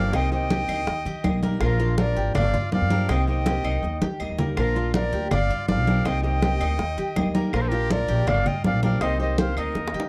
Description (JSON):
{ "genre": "latin, Cuban son and guajira", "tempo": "162 BPM", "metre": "4/4", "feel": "straight", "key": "unclear", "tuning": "A4 = 441 Hz", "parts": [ { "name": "silver concert flute", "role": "melody", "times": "0.0-10.1 s", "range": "Bb4 to G5", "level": "-31 LUFS", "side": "equal", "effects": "none" }, { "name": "brilliant trumpet", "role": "second line", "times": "0.0-10.1 s", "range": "F4 to Eb5", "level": "-37 LUFS", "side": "equal", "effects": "none" }, { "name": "flamenco guitar", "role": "accompaniment", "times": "0.0-9.8 s", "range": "C3 to G4", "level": "-33 LUFS", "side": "equal", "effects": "none" }, { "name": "Cuban tres", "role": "arpeggios", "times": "0.0-10.1 s", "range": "D4 to Eb5", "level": "-35 LUFS", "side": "equal", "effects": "none" }, { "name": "upright bass", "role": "bass", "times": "0.0-10.1 s", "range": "G1 to Eb3", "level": "-28 LUFS", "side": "equal", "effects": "none" }, { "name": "bongos", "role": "percussion", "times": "0.1-10.1 s", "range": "none", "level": "-35 LUFS", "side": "equal", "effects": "none" }, { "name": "claves", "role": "percussion", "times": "0.1-9.8 s", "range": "none", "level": "-42 LUFS", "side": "equal", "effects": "none" }, { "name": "congas", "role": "percussion", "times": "0.1-10.1 s", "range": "none", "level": "-29 LUFS", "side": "equal", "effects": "none" } ], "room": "studio reverb", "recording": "dry, close 1970s-style studio recording", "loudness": "-23 LUFS", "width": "mono", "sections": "0.0-10.1 A section", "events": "drum fill 3.5-4.6, 9.8-10.1", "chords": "0.1 Cm7; 0.9 Eb; 1.6 Bb; 2.4 Gm7; 3.1 Cm7; 3.8 Eb; 4.6 Bb; 5.3 Gm7; 6.0 Cm7; 6.8 Eb; 7.5 Bb; 8.3 Gm7; 9.0 Cm7", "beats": "| 0.13 0.50 0.87 1.24 | 1.61 1.98 2.35 2.72 | 3.09 3.46 3.83 4.20 | 4.57 4.94 5.31 5.68 | 6.05 6.42 6.79 7.16 | 7.53 7.90 8.27 8.64 | 9.01 9.38 9.75" }